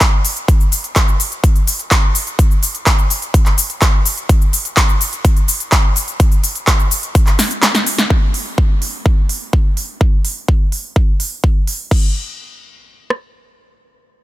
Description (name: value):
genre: EDM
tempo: 126 BPM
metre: 4/4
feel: straight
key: none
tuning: none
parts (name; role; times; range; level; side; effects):
- big-room dance drum kit; drums; 0.0-13.2 s; kick drum, rim click; -12 LUFS; equal; none
- big-room dance drum kit; drums; 0.0-12.0 s; crash cymbal, handclaps, hi-hat, shaker, snare drum; -17 LUFS; equal; overdrive
room: little or no reverb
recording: none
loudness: -12 LUFS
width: side -16 dB against mid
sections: 0.0-8.1 A section; 8.1-11.9 B section; 11.9-14.2 C section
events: drop 0.0-8.1; drum fill 7.4-8.1; kick drops out 7.6-8.1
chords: none